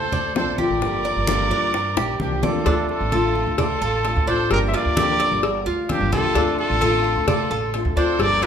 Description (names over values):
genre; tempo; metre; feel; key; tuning
latin, Cuban son and guajira; 130 BPM; 4/4; straight; D minor; A4 = 440 Hz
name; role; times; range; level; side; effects
clear trumpet; melody; 0.0-8.5 s; G4 to E5; -23 LUFS; equal; none
clear studio violin section; second line; 0.0-8.5 s; D4 to C5; -30 LUFS; right 1 dB; none
Cuban tres; arpeggios; 0.0-8.5 s; D4 to D5; -27 LUFS; right 3 dB; none
upright bass; bass; 0.0-8.4 s; G1 to G2; -25 LUFS; right 1 dB; none
bongos and cowbell; percussion; 0.1-8.5 s; none; -28 LUFS; left 4 dB; none
congas; percussion; 0.1-8.5 s; none; -29 LUFS; equal; none
flamenco guitar; accompaniment; 0.4-8.5 s; D3 to G4; -26 LUFS; left 3 dB; none
room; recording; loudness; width
wet large studio reverb, RT60 1.4 s; minimal, uncompressed stereo recording; -18 LUFS; side -8 dB against mid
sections
0.0-2.7 A section; 2.7-8.5 B section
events
drum fill 2.0-2.7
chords
0.0 Dm7; 0.8 Gm7; 2.7 Dm7; 4.5 Gm7; 6.4 Dm7